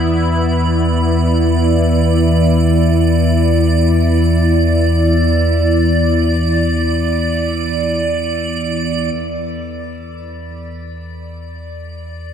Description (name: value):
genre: dark ambient drone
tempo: free time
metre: none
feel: none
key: unclear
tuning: A4 = 440 Hz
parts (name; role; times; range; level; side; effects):
- sweeping resonant pad; sustained chords; 0.0-9.1 s; E3 to E4; -18 LUFS; equal; chorus, shimmer reverb
- deep rumbling drone; drone; 0.0-12.3 s; E2 to E3; -16 LUFS; equal; built-in reverb
- icy glass pad; texture; 0.0-12.3 s; D5; -21 LUFS; right 3 dB; chorus, built-in reverb, shimmer reverb
- bronze singing bowl; arpeggios; 9.1-12.3 s; E3; -39 LUFS; equal; tape echo, shimmer reverb
room: wet cathedral reverb, RT60 5.6 s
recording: in a vast, echoing space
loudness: -12 LUFS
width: side -8 dB against mid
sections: 0.0-9.1 A section; 9.1-12.3 B section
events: fade-in on analog synth pad 0.0-9.1; fade-in on ambient pad 0.0-9.1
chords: 0.0 E5; 9.1 E7(no3)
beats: free time